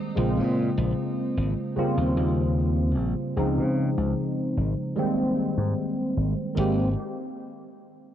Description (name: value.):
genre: vaporwave.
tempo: 75 BPM.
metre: 4/4.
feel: straight.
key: Ab major.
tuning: A4 = 435 Hz.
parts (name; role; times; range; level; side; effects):
tine electric piano; accompaniment; 0.0-6.9 s; Db3 to G4; -25 LUFS; equal; analog chorus, tape echo.
glassy slap bass; bass; 0.2-6.9 s; Ab1 to Db3; -26 LUFS; equal; low-pass filter.
room: moderate plate reverb, RT60 3.2 s.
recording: dreamy mix soaked in reverb, cassette tape.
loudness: -23 LUFS.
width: side -10 dB against mid.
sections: 0.0-6.6 A section; 6.6-8.1 B section.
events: filter sweep on slap bass 0.0-6.6.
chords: 0.2 Bbm9; 1.8 Eb13; 3.4 Dbmaj9; 5.0 Abmaj9.